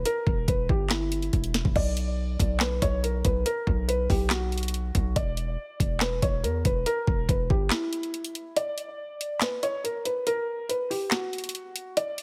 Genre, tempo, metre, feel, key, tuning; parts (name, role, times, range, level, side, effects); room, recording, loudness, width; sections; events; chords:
hip hop, trap; 141 BPM; 4/4; half-time; A4 = 440 Hz
felt-muted upright piano; melody; 0.0-12.2 s; E4 to D5; -32 LUFS; equal; low-pass filter
hard-hitting 808-style bass; bass; 0.0-7.7 s; E1 to E2; -30 LUFS; equal
trap drum kit; drums; 0.1-12.2 s; crash cymbal, handclaps, hi-hat, kick drum, snare drum; -30 LUFS; equal
little or no reverb; -27 LUFS; mono
0.0-12.2 A section
drum fill 1.3-1.8; break 7.7-8.6, 8.6-12.2
0.0 Em; 1.8 Bm; 5.2 E7(no3); 8.6 N.C.